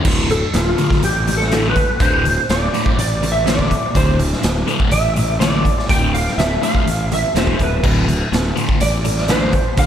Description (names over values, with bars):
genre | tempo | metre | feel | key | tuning
psychedelic rock | 123 BPM | 4/4 | straight | D dorian | A4 = 440 Hz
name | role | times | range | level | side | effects
fuzz guitar | riff | 0.0-9.9 s | D2 to D3 | -21 LUFS | left 1 dB | distortion, phaser
raw garage drum kit | drums | 0.0-9.9 s | crash cymbal, hi-hat, kick drum, snare drum | -19 LUFS | equal | none
fuzz fingered electric bass | bass | 0.1-9.9 s | D1 to A1 | -20 LUFS | equal | overdrive
electric slide guitar | melody | 0.3-9.9 s | F4 to G5 | -20 LUFS | equal | ensemble chorus, tape echo
room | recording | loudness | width
light reverb, studio ambience | none | -14 LUFS | side -9 dB against mid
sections
0.1-9.9 A section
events
electric slide guitar solo 0.1-9.9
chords
0.1 D5